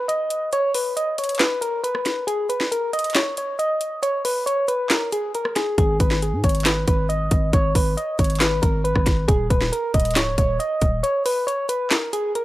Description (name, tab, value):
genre	hip hop, trap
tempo	137 BPM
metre	4/4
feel	half-time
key	G# minor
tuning	A4 = 440 Hz
part	soft electric-piano-like synth keys	melody	0.0-12.4 s	G#4 to D#5	-22 LUFS	equal	chorus, low-pass filter
part	trap drum kit	drums	0.1-12.4 s	handclaps, hi-hat, kick drum, rim click, snare drum	-21 LUFS	equal	none
part	growling 808-style bass	bass	5.8-11.0 s	C#1 to G#2	-23 LUFS	equal	none
room	little or no reverb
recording	dry, gritty hardware recording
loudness	-19 LUFS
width	side -16 dB against mid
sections	0.0-12.4 A section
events	break 0.0-5.8; kick muted 11.0-12.4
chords	0.0 N.C.; 5.8 G#m; 9.3 Bmaj13/C#